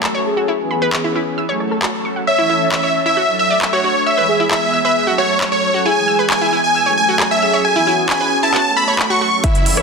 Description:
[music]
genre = uplifting trance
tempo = 134 BPM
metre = 4/4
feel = straight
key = F# minor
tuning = A4 = 440 Hz
[part]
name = analog string pad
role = sustained chords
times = 0.0-9.8 s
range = E3 to A4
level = -22 LUFS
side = left 1 dB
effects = ensemble chorus, sidechain pumping
[part]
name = analog pluck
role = arpeggios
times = 0.0-9.8 s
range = E4 to E6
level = -22 LUFS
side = right 2 dB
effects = chorus, sidechain pumping, ping-pong delay
[part]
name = big-room dance drum kit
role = drums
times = 0.0-9.8 s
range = handclaps, hi-hat, rim click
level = -22 LUFS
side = equal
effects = sidechain pumping on hats
[part]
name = warm velvety synth lead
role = second line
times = 0.3-8.3 s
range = F#4 to C#5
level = -23 LUFS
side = left 1 dB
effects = chorus, tape echo
[part]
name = supersaw chords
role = melody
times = 2.3-9.8 s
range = E4 to C#6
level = -15 LUFS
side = equal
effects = sidechain pumping, ping-pong delay
[part]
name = dark concert grand piano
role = second line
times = 9.4-9.8 s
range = E5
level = -26 LUFS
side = equal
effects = sidechain pumping, ping-pong delay
[part]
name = electronic kick drum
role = drums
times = 9.4-9.5 s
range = none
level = -15 LUFS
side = equal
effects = none
[part]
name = riser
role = sound effects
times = 9.5-9.8 s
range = none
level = -28 LUFS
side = left 4 dB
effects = none
[sound]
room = moderate lush hall reverb, RT60 2.1 s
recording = dense, heavily limited modern master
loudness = -13 LUFS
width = side -4 dB against mid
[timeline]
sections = 0.0-9.4 A section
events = riser 9.5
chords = 0.5 C#m7; 1.4 F#m; 2.3 A; 3.2 D; 4.1 E; 5.0 F#m; 5.9 E; 6.8 F#m; 7.6 C#m7; 8.5 F#m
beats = 0.03 | 0.48 0.93 1.38 1.82 | 2.27 2.72 3.17 3.62 | 4.06 4.51 4.96 5.41 | 5.86 6.30 6.75 7.20 | 7.65 8.09 8.54 8.99 | 9.44

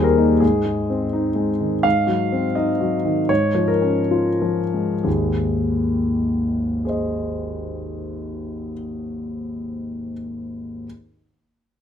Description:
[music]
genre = classical, romantic character piece for solo piano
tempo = 60-85 BPM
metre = 2/4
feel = rubato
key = Ab major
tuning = A4 = 440 Hz
[part]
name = warm concert grand piano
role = solo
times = 0.0-10.9 s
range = Ab1 to F5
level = -19 LUFS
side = left 1 dB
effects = none
[sound]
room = light reverb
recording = close, detailed microphones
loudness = -19 LUFS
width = side -8 dB against mid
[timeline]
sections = 0.0-1.8 A section; 1.8-5.1 B section; 5.1-8.6 C section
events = slowing down 1.1-5.1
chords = 0.4 Ab; 1.8 Ab7; 3.3 Db/Ab; 5.1 Ab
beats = | 0.42 1.14 | 1.85 2.57 | 3.29 4.11 | 5.06 5.96 | 6.85 7.74

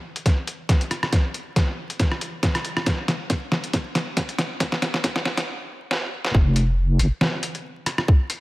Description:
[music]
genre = deep dubstep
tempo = 138 BPM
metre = 4/4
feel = swing 55% on 16ths, half-time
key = unclear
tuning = A4 = 444 Hz
[part]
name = trip hop sampler-style drum kit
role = drums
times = 0.2-8.4 s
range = hi-hat, rim click, snare drum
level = -24 LUFS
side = equal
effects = none
[part]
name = electronic kick drum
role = drums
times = 0.3-8.2 s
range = none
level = -19 LUFS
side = equal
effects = overdrive
[part]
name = deep soft wobble bass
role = bass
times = 6.3-7.1 s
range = F1 to G1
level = -18 LUFS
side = equal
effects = chorus
[sound]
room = light reverb, digital ambience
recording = vinyl crackle, high-pass filter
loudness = -21 LUFS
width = side -20 dB against mid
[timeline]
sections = 0.0-6.3 A section; 6.3-8.4 B section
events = build-up 0.0-6.3; drum fill 0.0-5.5, 5.9-6.3; filter sweep 0.0-6.3; stop 5.5-6.3; drop 6.3-8.4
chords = none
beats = 0.26 0.69 | 1.13 1.56 2.00 2.43 | 2.87 3.30 3.74 4.17 | 4.61 5.04 5.48 5.91 | 6.34 6.78 7.21 7.65 | 8.08

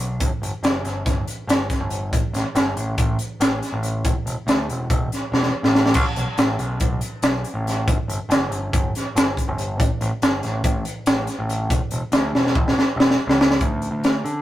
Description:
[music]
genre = math rock and midwest emo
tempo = 282 BPM (eighths)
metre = 9/8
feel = straight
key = unclear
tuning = A4 = 440 Hz
[part]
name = growling picked electric bass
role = bass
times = 0.0-14.4 s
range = E1 to D3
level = -25 LUFS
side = equal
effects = overdrive
[part]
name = crisp fusion drum kit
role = drums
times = 0.2-14.4 s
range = crash cymbal, hi-hat, kick drum, snare drum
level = -20 LUFS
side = equal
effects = none
[sound]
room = light reverb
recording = rough rehearsal-room recording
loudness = -19 LUFS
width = side -14 dB against mid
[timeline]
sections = 0.0-13.6 A section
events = drum fill 5.3-6.0, 12.3-13.6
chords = none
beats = 0.00 | 0.21 0.42 0.64 0.85 1.06 1.27 1.49 1.70 1.91 | 2.12 2.34 2.55 2.76 2.98 3.19 3.40 3.61 3.83 | 4.04 4.25 4.47 4.68 4.89 5.11 5.32 5.53 5.75 | 5.96 6.17 6.39 6.60 6.81 7.03 7.24 7.45 7.67 | 7.88 8.09 8.31 8.52 8.73 8.95 9.16 9.37 9.58 | 9.80 10.01 10.22 10.43 10.65 10.86 11.07 11.28 11.49 | 11.71 11.92 12.13 12.34 12.56 12.77 12.98 13.19 13.40 | 13.62 13.83 14.04 14.26

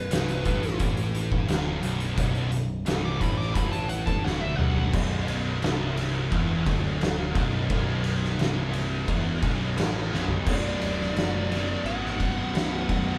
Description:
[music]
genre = stoner and doom metal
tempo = 87 BPM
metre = 4/4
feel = straight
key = unclear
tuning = A4 = 441 Hz
[part]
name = fuzz lead guitar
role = melody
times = 0.0-4.9, 10.5-13.2 s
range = B4 to D6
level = -36 LUFS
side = equal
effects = distortion
[part]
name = high-gain distorted guitar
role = riff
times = 0.0-13.2 s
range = B1 to B2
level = -36 LUFS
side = equal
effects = distortion
[part]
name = thick fuzz guitar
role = riff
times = 0.0-13.2 s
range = B1 to B2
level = -35 LUFS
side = equal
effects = none
[part]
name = thick fuzz guitar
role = riff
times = 0.0-13.2 s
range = B1 to B2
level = -34 LUFS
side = equal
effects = distortion
[part]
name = modern bright picked electric bass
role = bass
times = 0.0-13.1 s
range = B0 to B1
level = -35 LUFS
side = equal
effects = overdrive
[part]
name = oversized low-tuned drum kit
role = drums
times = 0.1-13.1 s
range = crash cymbal, hi-hat, kick drum, ride cymbal, snare drum, toms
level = -30 LUFS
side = equal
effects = none
[sound]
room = light reverb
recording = band playing live in one room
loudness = -26 LUFS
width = mono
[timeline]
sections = 0.0-4.9 A section; 4.9-10.5 B section; 10.5-13.2 C section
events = lead electric guitar solo 0.0-4.9; drum fill 4.2-4.9, 10.1-10.5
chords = 0.0 Bm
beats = 0.11 0.80 1.49 | 2.18 2.87 3.56 4.25 | 4.94 5.63 6.32 7.01 | 7.70 8.39 9.08 9.77 | 10.46 11.16 11.85 12.54

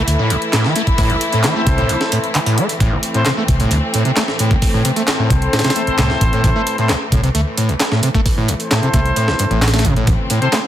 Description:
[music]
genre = breakbeat, breaks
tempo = 132 BPM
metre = 4/4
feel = straight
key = A minor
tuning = A4 = 443 Hz
[part]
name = clear studio string section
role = sustained chords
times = 0.0-10.7 s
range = E3 to E4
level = -23 LUFS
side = equal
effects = sidechain pumping
[part]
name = screaming distorted acid line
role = riff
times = 0.0-10.6 s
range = A1 to A3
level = -18 LUFS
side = equal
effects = distortion, analog chorus, ping-pong delay
[part]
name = vintage muted fingered electric bass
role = bass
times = 0.1-10.2 s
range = A1 to D2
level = -17 LUFS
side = equal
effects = tube saturation
[part]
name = breakbeat sampler-style drum kit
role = drums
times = 0.1-10.6 s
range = hi-hat, kick drum, snare drum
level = -18 LUFS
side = equal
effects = none
[part]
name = punchy analog drum machine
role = drums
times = 0.1-10.6 s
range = handclaps, hi-hat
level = -24 LUFS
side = equal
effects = none
[part]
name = warm brass ensemble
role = stabs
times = 1.3-10.6 s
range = C4 to C5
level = -22 LUFS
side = left 2 dB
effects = ping-pong delay
[sound]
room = light reverb, digital ambience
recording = dense, heavily limited modern master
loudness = -13 LUFS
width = side -11 dB against mid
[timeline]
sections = 0.0-10.7 A section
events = none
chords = 0.0 Am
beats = 0.07 0.53 | 0.98 1.44 1.89 2.35 | 2.80 3.26 3.71 4.17 | 4.62 5.08 5.53 5.98 | 6.44 6.89 7.35 7.80 | 8.26 8.71 9.17 9.62 | 10.07 10.53

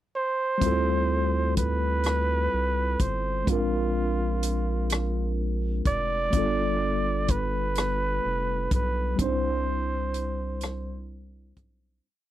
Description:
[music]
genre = slow six-eight R&B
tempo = 42 BPM (dotted quarters)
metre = 6/8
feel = straight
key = D dorian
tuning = A4 = 440 Hz
[part]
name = warm flugelhorn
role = melody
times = 0.2-11.1 s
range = F4 to D5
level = -29 LUFS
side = right 2 dB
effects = slapback echo
[part]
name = mellow tine electric piano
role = accompaniment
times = 0.6-12.1 s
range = G3 to C5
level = -30 LUFS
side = left 1 dB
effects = medium stereo tremolo
[part]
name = round analog bass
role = bass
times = 0.6-12.0 s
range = F1 to D2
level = -29 LUFS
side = equal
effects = none
[part]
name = warm soul drum kit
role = drums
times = 0.6-11.8 s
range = hi-hat, kick drum, rim click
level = -27 LUFS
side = equal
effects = none
[sound]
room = little or no reverb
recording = none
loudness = -24 LUFS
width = side -13 dB against mid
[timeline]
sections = 0.0-0.6 pickup bar; 0.6-12.0 verse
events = fade-out 9.2-12.0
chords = 0.0 N.C.; 0.6 Dm11; 3.5 Bb9; 6.3 G9; 9.2 Cmaj9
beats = | 0.62 2.04 | 3.47 4.90 | 6.33 7.76 | 9.19 10.62

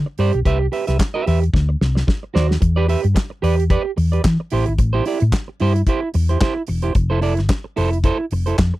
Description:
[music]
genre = disco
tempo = 111 BPM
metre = 4/4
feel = swing 56% on 16ths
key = unclear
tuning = A4 = 440 Hz
[part]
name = hollow-body short-scale fingered electric bass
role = bass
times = 0.0-8.7 s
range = E1 to E3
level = -17 LUFS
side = left 1 dB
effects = none
[part]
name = electric guitar at the edge of break-up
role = accompaniment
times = 0.1-8.8 s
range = E4 to E5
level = -21 LUFS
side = right 5 dB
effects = none
[part]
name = damped 70s drum kit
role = drums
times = 0.2-8.7 s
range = handclaps, hi-hat, kick drum, snare drum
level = -19 LUFS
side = equal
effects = none
[sound]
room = little or no reverb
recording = dry, close 1970s-style studio recording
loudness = -16 LUFS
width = side -17 dB against mid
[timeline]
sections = 0.0-2.6 A section; 2.6-8.8 B section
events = drum fill 1.5-2.6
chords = 0.5 Cmaj7; 1.5 D7; 2.6 Em7; 4.5 Am7; 7.0 Fmaj7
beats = | 0.45 0.99 1.54 2.08 | 2.62 3.16 3.70 4.24 | 4.79 5.33 5.87 6.41 | 6.96 7.50 8.04 8.59

